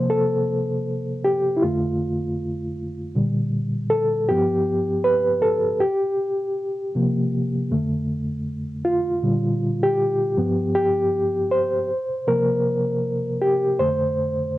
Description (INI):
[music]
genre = hip hop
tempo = 79 BPM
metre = 4/4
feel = swing 58% on 16ths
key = F major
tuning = A4 = 440 Hz
[part]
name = reed electric piano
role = solo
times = 0.0-14.6 s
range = F2 to C5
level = -20 LUFS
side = equal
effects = overdrive, fast tremolo, cassette tape, low-pass filter
[sound]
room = wet small room ambience, RT60 0.5 s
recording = worn, warbling old tape, cassette tape, warbly pitch drift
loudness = -20 LUFS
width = side -16 dB against mid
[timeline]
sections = 0.0-14.6 A section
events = reed electric piano solo 0.0-14.6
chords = 0.0 C7sus4; 1.6 F6; 3.2 Bb6; 4.3 G7; 5.8 C7sus4; 7.7 F6; 9.2 Bb6; 10.4 G7; 11.9 C7sus4; 13.8 F6